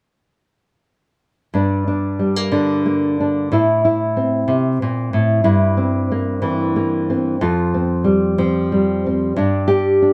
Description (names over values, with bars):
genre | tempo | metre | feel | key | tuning
folk, solo fingerstyle acoustic guitar | 62 BPM (dotted quarters) | 6/8 | straight | G dorian | A4 = 439 Hz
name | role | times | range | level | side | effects
nylon-string guitar | solo | 1.5-10.1 s | F2 to G4 | -18 LUFS | equal | none
room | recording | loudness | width
light reverb | none | -18 LUFS | mono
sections
1.5-9.3 A section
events
none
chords
1.5 Gm; 3.5 Am; 5.4 C7/G; 7.4 Fsus2; 9.3 G5